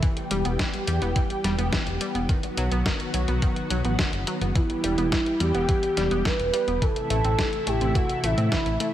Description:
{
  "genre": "synthwave",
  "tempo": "106 BPM",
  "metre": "4/4",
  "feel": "straight",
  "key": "E harmonic minor",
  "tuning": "A4 = 438 Hz",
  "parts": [
    { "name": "analog string pad", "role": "sustained chords", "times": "0.0-8.9 s", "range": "C3 to G4", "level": "-30 LUFS", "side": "equal", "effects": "ensemble chorus, vintage 12-bit sampler grit, sidechain pumping" },
    { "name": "analog pluck", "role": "arpeggios", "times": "0.0-8.9 s", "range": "D#3 to C4", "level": "-32 LUFS", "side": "left 1 dB", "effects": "chorus, tape echo" },
    { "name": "clean 12-bit digital drum machine", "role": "drums", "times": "0.0-8.9 s", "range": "hi-hat, snare drum", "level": "-30 LUFS", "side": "left 1 dB", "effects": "small room ambience" },
    { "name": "electronic kick drum", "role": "drums", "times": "0.0-8.6 s", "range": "none", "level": "-26 LUFS", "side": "equal", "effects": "overdrive, small room ambience" },
    { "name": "dark detuned saw bass", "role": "bass", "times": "0.3-8.8 s", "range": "E1 to A2", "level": "-26 LUFS", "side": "equal", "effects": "sidechain pumping" },
    { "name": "expressive synth lead", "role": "melody", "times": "4.6-8.9 s", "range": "E4 to B4", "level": "-26 LUFS", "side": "right 2 dB", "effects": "lush chorus, vintage 12-bit sampler grit, tape echo" }
  ],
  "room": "light reverb",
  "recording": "none",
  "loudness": "-22 LUFS",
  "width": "side -12 dB against mid",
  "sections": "0.0-8.9 A section",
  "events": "none",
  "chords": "0.0 Em; 2.3 B; 4.6 Em; 6.8 Am",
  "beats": "| 0.03 0.59 1.16 1.73 | 2.29 2.86 3.42 3.99 | 4.56 5.12 5.69 6.25 | 6.82 7.39 7.95 8.52"
}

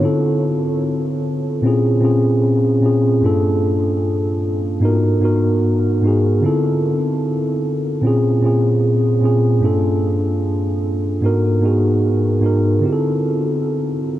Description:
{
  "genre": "hip hop",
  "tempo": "75 BPM",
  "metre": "4/4",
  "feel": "swing 65% on 16ths",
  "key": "G dorian",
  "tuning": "A4 = 436 Hz",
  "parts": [
    { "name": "mellow tine electric piano", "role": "solo", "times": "0.0-14.2 s", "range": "G2 to Bb4", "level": "-15 LUFS", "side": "equal", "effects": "slow stereo tremolo, analog delay" }
  ],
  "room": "wet huge ambient reverb, RT60 8.3 s",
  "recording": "dreamy mix soaked in reverb, cassette tape",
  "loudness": "-15 LUFS",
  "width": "side -13 dB against mid",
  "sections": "0.0-14.2 A section",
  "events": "none",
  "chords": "0.0 Dm7; 1.6 Bbm7; 3.2 Gm7; 4.8 Abm7; 6.4 Dm7; 8.0 Bbm7; 9.6 Gm7; 11.2 Abm7; 12.8 Dm7",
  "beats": "| 0.03 0.83 1.63 2.43 | 3.23 4.03 4.83 5.63 | 6.43 7.23 8.03 8.83 | 9.63 10.43 11.23 12.03 | 12.83 13.63"
}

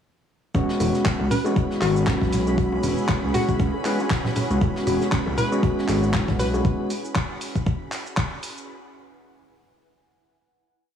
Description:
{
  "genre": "deep house",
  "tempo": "118 BPM",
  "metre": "4/4",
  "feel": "swing 57% on 16ths",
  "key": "E major",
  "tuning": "A4 = 440 Hz",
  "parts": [
    { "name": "warm analog pad", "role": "sustained chords", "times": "0.5-8.6 s", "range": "C#4 to G#4", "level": "-33 LUFS", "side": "right 1 dB", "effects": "chorus, vintage 12-bit sampler grit, sidechain pumping" },
    { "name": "mallet-like synth pluck", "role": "arpeggios", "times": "0.5-6.5 s", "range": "C#4 to F#4", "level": "-32 LUFS", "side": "right 3 dB", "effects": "none" },
    { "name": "overdriven tine electric piano", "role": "stabs", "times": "0.5-6.9 s", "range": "G#3 to B4", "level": "-26 LUFS", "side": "equal", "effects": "sidechain pumping, tape echo" },
    { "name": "smooth gliding synth bass", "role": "bass", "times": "0.5-6.6 s", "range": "E1 to C#2", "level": "-25 LUFS", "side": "left 1 dB", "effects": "sidechain pumping" },
    { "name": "electronic kick drum", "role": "drums", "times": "0.5-8.3 s", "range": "none", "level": "-24 LUFS", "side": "left 1 dB", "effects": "none" },
    { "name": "house drum kit", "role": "drums", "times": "0.5-8.7 s", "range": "handclaps, hi-hat, shaker", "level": "-31 LUFS", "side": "equal", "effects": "none" },
    { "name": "jazz brush drum kit", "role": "drums", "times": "0.5-6.5 s", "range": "hi-hat, snare drum", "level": "-40 LUFS", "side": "left 2 dB", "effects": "none" },
    { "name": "granular cloud pad", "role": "texture", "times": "1.8-6.6 s", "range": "E4 to G#5", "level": "-35 LUFS", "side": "equal", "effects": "built-in reverb, sidechain pumping" },
    { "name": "string machine, violins", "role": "texture", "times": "0.5-8.7 s", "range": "B5", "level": "-39 LUFS", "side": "equal", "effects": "ensemble chorus, sidechain pumping" },
    { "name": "bongos and congas", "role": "percussion", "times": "0.6-6.6 s", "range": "none", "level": "-31 LUFS", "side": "left 2 dB", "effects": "none" },
    { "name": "hollow square pluck", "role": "melody", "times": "1.3-6.5 s", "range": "F#4 to B4", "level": "-31 LUFS", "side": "left 2 dB", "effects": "chorus, tape echo" }
  ],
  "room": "light reverb",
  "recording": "cassette tape, small room ambience",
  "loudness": "-20 LUFS",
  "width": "side -8 dB against mid",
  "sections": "0.5-8.7 drop",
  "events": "drop 0.5-8.7",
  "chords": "0.5 E69",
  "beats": "| 0.55 1.05 1.56 2.07 | 2.58 3.09 3.60 4.11 | 4.61 5.12 5.63 6.14 | 6.65 7.16 7.67 8.17"
}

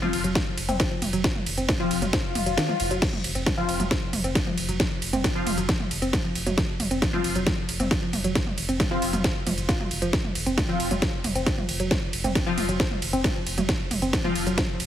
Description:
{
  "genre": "driving peak-time techno",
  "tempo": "135 BPM",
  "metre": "4/4",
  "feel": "straight",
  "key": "unclear",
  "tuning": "A4 = 440 Hz",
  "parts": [
    { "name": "woody wave-folded pluck", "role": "riff", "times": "0.0-14.6 s", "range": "Eb3 to F4", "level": "-29 LUFS", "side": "equal", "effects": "chorus, tube saturation, sidechain pumping, tape echo" },
    { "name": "rave stab", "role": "stabs", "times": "0.0-14.4 s", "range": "F3 to F4", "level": "-29 LUFS", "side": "left 3 dB", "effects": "chorus, built-in reverb, sidechain pumping, ping-pong delay" },
    { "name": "techno drum kit", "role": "drums", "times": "0.0-14.9 s", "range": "crash cymbal, hi-hat, ride cymbal, snare drum, toms", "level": "-27 LUFS", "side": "right 1 dB", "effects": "none" },
    { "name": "warm sub bass", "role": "bass", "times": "0.1-14.9 s", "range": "F1", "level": "-31 LUFS", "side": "equal", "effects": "tube saturation, sidechain pumping, low-pass filter" },
    { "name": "electronic kick drum", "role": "drums", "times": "0.4-14.7 s", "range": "none", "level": "-27 LUFS", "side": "equal", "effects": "none" },
    { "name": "swell", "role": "sound effects", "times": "2.3-3.0 s", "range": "none", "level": "-30 LUFS", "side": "left 6 dB", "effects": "none" }
  ],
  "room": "light reverb",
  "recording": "heavily compressed radio sound, multiband compression, faint mains hum",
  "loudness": "-22 LUFS",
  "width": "side -11 dB against mid",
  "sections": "0.0-14.9 A section",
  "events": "swell 2.3-3.0; kick drops out 2.6-3.0",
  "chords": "0.0 F5",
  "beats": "0.35 0.80 | 1.24 1.69 2.13 2.58 | 3.02 3.46 3.91 4.35 | 4.80 5.24 5.69 6.13 | 6.58 7.02 7.46 7.91 | 8.35 8.80 9.24 9.69 | 10.13 10.58 11.02 11.46 | 11.91 12.35 12.80 13.24 | 13.69 14.13 14.58"
}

